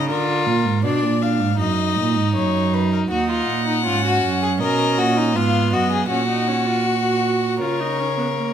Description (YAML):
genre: classical, baroque-style fugue for string quartet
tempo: 80 BPM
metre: 4/4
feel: straight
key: Eb minor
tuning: A4 = 440 Hz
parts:
  - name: warm violin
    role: melody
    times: 0.0-8.5 s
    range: Bb4 to F#5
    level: -24 LUFS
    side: left 8 dB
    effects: none
  - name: rich violin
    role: second line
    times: 0.0-8.5 s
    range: D4 to A#4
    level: -22 LUFS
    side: left 2 dB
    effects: none
  - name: warm cello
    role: bass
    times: 0.0-8.5 s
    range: D#2 to D3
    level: -21 LUFS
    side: right 4 dB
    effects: none
  - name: warm viola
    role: accompaniment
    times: 3.1-8.5 s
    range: A#3 to F#4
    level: -24 LUFS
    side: right 3 dB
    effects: none
room: moderate recital hall reverb, RT60 1.4 s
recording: none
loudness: -17 LUFS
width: side -9 dB against mid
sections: 0.0-3.1 A section; 3.1-8.5 B section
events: none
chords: 0.1 Bb7; 1.6 Ebm/Gb; 3.1 D#m; 4.6 B; 6.1 F#/A#; 7.6 C#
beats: | 0.10 0.84 1.59 2.35 | 3.11 3.86 4.60 5.35 | 6.09 6.85 7.61 8.37